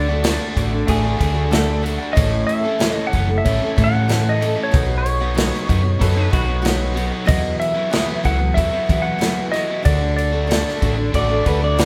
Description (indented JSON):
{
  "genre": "folk rock and heartland rock",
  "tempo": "94 BPM",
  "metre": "4/4",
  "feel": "straight",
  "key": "unclear",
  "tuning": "A4 = 439 Hz",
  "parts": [
    { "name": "clean lap steel guitar", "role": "melody", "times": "0.0-11.9 s", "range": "C#5 to F#5", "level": "-26 LUFS", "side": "equal", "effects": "none" },
    { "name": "clear concert grand piano", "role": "accompaniment", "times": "0.0-11.9 s", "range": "A3 to D#6", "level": "-34 LUFS", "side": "equal", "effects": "none" },
    { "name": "picked steel-string acoustic guitar", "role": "accompaniment", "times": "0.0-11.9 s", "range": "E2 to C#5", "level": "-29 LUFS", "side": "equal", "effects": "none" },
    { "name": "overdriven electric guitar", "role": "riff", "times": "0.0-11.9 s", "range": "E2 to A4", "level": "-28 LUFS", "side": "equal", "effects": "none" },
    { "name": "hollow-body short-scale fingered electric bass", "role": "bass", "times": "0.0-11.9 s", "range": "F#1 to E3", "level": "-23 LUFS", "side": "equal", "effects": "none" },
    { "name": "natural country drum kit", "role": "drums", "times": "0.2-11.9 s", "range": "crash cymbal, kick drum, snare drum", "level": "-24 LUFS", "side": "equal", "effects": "none" },
    { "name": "electric guitar through a small old amp", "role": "second line", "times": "0.9-1.8, 6.0-6.6, 11.2-11.9 s", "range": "F#4 to D5", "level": "-26 LUFS", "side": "equal", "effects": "none" }
  ],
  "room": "moderate studio reverb, RT60 0.8 s",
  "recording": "band playing live in one room",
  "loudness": "-19 LUFS",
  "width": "mono",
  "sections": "0.0-11.9 A section",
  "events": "none",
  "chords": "0.0 D; 2.2 A; 4.7 Badd9; 7.3 Esus2; 9.9 D",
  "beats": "0.24 0.88 1.52 | 2.16 2.80 3.44 4.08 | 4.72 5.36 6.00 6.65 | 7.29 7.93 8.57 9.21 | 9.85 10.49 11.14 11.78"
}